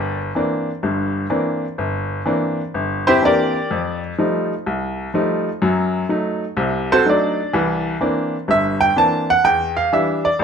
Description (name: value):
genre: solo jazz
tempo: 125 BPM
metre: 4/4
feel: swing 68% on 8ths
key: C mixolydian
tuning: A4 = 440 Hz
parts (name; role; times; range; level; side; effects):
- bright upright piano; solo; 0.0-10.4 s; G1 to A5; -17 LUFS; equal; none
room: moderate large studio reverb, RT60 1.2 s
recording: dark, warm production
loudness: -17 LUFS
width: side -7 dB against mid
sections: 0.0-10.4 A section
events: upright piano solo 0.0-10.4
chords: 0.0 C9; 3.7 F9; 5.6 F#dim7; 7.5 C9; 9.4 Em7